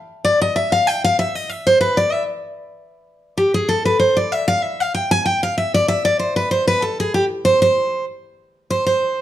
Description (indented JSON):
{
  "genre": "bluegrass",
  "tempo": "192 BPM",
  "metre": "4/4",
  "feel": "swing 53% on 8ths",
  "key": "C major",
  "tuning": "A4 = 442 Hz",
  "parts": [
    { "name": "picked steel-string acoustic guitar", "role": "solo", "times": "0.2-9.2 s", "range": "G4 to Ab5", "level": "-16 LUFS", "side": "equal", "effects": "none" }
  ],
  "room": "moderate large studio reverb, RT60 1.0 s",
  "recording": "dark, warm production",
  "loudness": "-16 LUFS",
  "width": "side -12 dB against mid",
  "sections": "0.0-2.8 A section; 2.8-9.2 A section",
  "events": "steel-string acoustic guitar solo 0.0-2.8, 2.8-9.2",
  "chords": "none",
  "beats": "| 0.24 0.56 0.87 1.18 | 1.50 1.81 2.12 2.44 | 2.75 3.06 3.38 3.69 | 4.00 4.32 4.63 4.94 | 5.26 5.57 5.88 6.20 | 6.51 6.82 7.14 7.45 | 7.76 8.08 8.39 8.70 | 9.02"
}